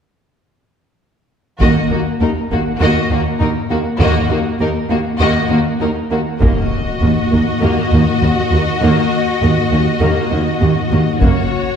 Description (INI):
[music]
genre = cinematic, epic orchestral film score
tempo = 100 BPM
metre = 4/4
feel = straight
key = Eb minor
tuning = A4 = 440 Hz
[part]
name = rich symphonic violin section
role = melody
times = 1.6-11.8 s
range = Gb4 to Eb5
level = -23 LUFS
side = left 4 dB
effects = none
[part]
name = warm symphonic violin section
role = second line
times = 1.6-11.8 s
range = Bb3 to Gb4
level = -21 LUFS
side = left 3 dB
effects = none
[part]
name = clear symphonic viola section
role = accompaniment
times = 1.6-11.5 s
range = Bb3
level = -20 LUFS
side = equal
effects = none
[part]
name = rich studio double bass section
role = bass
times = 1.6-11.3 s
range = Gb1 to Eb2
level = -18 LUFS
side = right 1 dB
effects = none
[part]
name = rich symphonic cello section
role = bass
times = 1.6-11.3 s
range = Eb2 to Gb2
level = -18 LUFS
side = right 1 dB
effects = none
[part]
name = taiko ensemble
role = drums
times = 1.6-2.8, 6.4-7.6, 11.2-11.8 s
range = none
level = -19 LUFS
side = equal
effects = none
[part]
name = impact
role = sound effects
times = 6.4-8.8 s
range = none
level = -24 LUFS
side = equal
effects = none
[sound]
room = wet scoring stage reverb, RT60 1.4 s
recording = heard from further back in the room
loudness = -13 LUFS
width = side -7 dB against mid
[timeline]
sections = 1.6-6.4 A section; 6.4-11.8 B section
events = build-up 6.4-11.8; impact 6.4-8.8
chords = 1.6 Ebm; 11.2 Gb